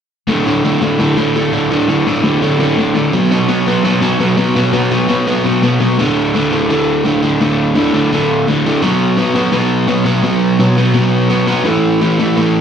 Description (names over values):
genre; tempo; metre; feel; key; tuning
punk; 169 BPM; 4/4; straight; D major; A4 = 440 Hz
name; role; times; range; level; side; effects
crunchy overdriven guitar; solo; 0.3-12.6 s; D2 to B3; -11 LUFS; equal; slapback echo
room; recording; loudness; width
moderate club reverb, RT60 0.6 s; live gig heard through the venue's PA, club reverb; -11 LUFS; side -8 dB against mid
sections
0.3-6.0 A section; 6.0-12.6 B section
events
none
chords
0.3 D5; 3.1 B5; 6.0 D5; 8.8 B5; 11.7 A5